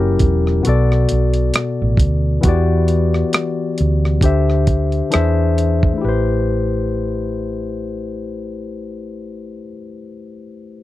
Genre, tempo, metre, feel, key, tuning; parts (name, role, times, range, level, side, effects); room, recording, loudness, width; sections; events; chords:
R&B, neo-soul; 67 BPM; 4/4; swing 56% on 16ths; A dorian; A4 = 439 Hz
barky tine electric piano; accompaniment; 0.0-10.8 s; B2 to E5; -20 LUFS; left 4 dB
hollow-body short-scale fingered electric bass; bass; 0.0-9.6 s; E1 to E2; -17 LUFS; right 1 dB
dusty soul sampler-style drum kit; drums; 0.2-6.0 s; hi-hat, kick drum, rim click; -17 LUFS; right 1 dB
little or no reverb; dry, close 1970s-style studio recording; -14 LUFS; side -15 dB against mid
0.0-6.0 A section; 6.0-9.6 B section
0.0 F#7b9; 0.6 Bm7; 2.4 Em9; 4.2 D9sus4; 5.1 E7b13; 6.0 Am7